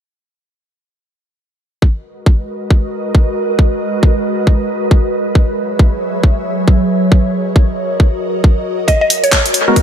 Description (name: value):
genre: UK garage, two-step garage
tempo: 136 BPM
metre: 4/4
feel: swing 61% on 16ths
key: G# minor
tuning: A4 = 440 Hz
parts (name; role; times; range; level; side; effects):
- ethereal airy pad; sustained chords; 2.4-9.8 s; F#3 to E5; -17 LUFS; right 1 dB; ensemble chorus, built-in reverb, sidechain pumping
- electronic kick drum; drums; 1.8-9.8 s; none; -10 LUFS; equal; none
- mallet-like synth pluck; melody; 8.9-9.4 s; C#5 to D#5; -14 LUFS; equal; chorus, cassette tape, analog delay
- garage drum kit; drums; 8.9-9.8 s; handclaps, hi-hat, rim click; -13 LUFS; equal; analog delay
- percussive organ stab; stabs; 9.7-9.8 s; G#3 to A#4; -9 LUFS; left 1 dB; analog chorus
room: moderate echo chamber reverb, RT60 1.8 s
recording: echo-heavy mix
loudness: -11 LUFS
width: side -9 dB against mid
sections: 1.8-9.8 A section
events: none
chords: 1.8 G#m9; 5.1 F#9sus4; 6.9 D#m7; 8.9 G#m9